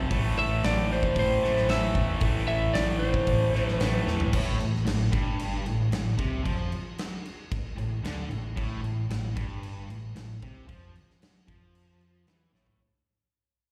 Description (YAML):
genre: hard rock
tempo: 113 BPM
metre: 4/4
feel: straight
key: A minor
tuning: A4 = 440 Hz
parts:
  - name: sludgy distorted guitar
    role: riff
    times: 0.0-12.8 s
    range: G2 to A3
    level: -32 LUFS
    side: equal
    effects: overdrive, slapback echo
  - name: overdriven picked electric bass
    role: bass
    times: 0.0-12.8 s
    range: G1 to F2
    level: -33 LUFS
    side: equal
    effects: none
  - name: huge arena drum kit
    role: drums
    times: 0.1-12.8 s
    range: crash cymbal, hi-hat, kick drum, snare drum, toms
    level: -34 LUFS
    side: equal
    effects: none
  - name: lightly driven lead guitar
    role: melody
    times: 0.4-4.0 s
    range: C5 to E5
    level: -31 LUFS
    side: equal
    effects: slapback echo, tape echo
room: light reverb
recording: live gig heard through the venue's PA, recital hall reverb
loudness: -27 LUFS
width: mono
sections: 0.0-4.3 A section; 4.3-12.8 B section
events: drum fill 4.1, 12.5; fade-out 4.3-12.8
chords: 0.1 Am; 4.3 N.C.